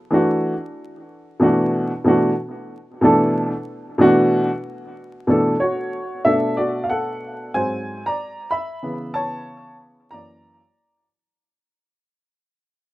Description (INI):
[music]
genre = hip hop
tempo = 93 BPM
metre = 4/4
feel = swing 63% on 16ths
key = B minor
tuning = A4 = 441 Hz
[part]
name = dark upright piano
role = solo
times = 0.1-11.1 s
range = F#2 to B5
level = -18 LUFS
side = equal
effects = none
[sound]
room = moderate studio reverb, RT60 0.5 s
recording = rough home demo mix, vinyl crackle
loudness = -18 LUFS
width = side -17 dB against mid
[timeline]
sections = 0.0-6.3 A section; 6.3-11.4 B section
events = fade-out 6.3-11.4; upright piano solo 6.3-11.4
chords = 0.0 E9sus4; 1.1 Bm7; 7.5 G#7; 8.8 Aadd9/C#; 10.1 F#aug7